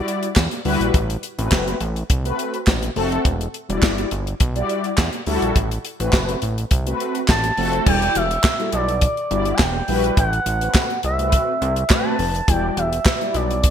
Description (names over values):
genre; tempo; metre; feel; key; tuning
early-eighties boogie funk; 104 BPM; 4/4; straight; A dorian; A4 = 441 Hz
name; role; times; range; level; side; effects
mellow synth brass; accompaniment; 0.0-13.5 s; G3 to D5; -24 LUFS; left 2 dB; chorus, phaser
tight funk drum kit; drums; 0.1-13.7 s; crash cymbal, handclaps, hi-hat, kick drum, snare drum; -20 LUFS; equal; gated reverb
fat analog bass; bass; 0.4-13.7 s; E1 to E2; -23 LUFS; right 1 dB; none
group handclap; percussion; 0.4-13.2 s; none; -30 LUFS; right 7 dB; none
expressive portamento lead; melody; 7.3-13.7 s; D5 to A5; -22 LUFS; right 1 dB; chorus
room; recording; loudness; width
light reverb, studio ambience; bright 1980s-style digital production; -17 LUFS; side -9 dB against mid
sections
0.0-7.9 A section; 7.9-13.7 B section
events
none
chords
0.0 Em9; 0.9 Am69; 3.2 Em9; 5.6 Am69; 7.9 Em9; 10.2 Am69; 12.5 Em9